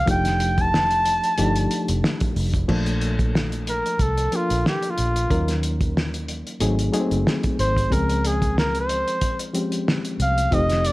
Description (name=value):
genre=lush 1970s-style soul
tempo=92 BPM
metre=4/4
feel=swing 54% on 16ths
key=Bb major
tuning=A4 = 440 Hz
part: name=warm flugelhorn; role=melody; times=0.0-10.9 s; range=F4 to A5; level=-23 LUFS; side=equal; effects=none
part: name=reed electric piano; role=accompaniment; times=0.0-10.9 s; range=F3 to Bb4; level=-26 LUFS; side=left 1 dB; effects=medium tremolo
part: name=vintage muted fingered electric bass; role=bass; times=0.0-10.9 s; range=F1 to Eb2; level=-24 LUFS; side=equal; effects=none
part: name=cloth-damped thuddy drum kit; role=drums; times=0.1-10.9 s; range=crash cymbal, hi-hat, kick drum, snare drum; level=-25 LUFS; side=equal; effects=none
room=light reverb, studio ambience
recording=none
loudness=-19 LUFS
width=side -19 dB against mid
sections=0.0-2.7 A section; 2.7-10.9 B section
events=flugelhorn solo 2.7-10.9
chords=0.1 F13; 2.7 Bbmaj7; 5.3 Ebm7; 6.6 Ab7b9; 7.9 Dbmaj7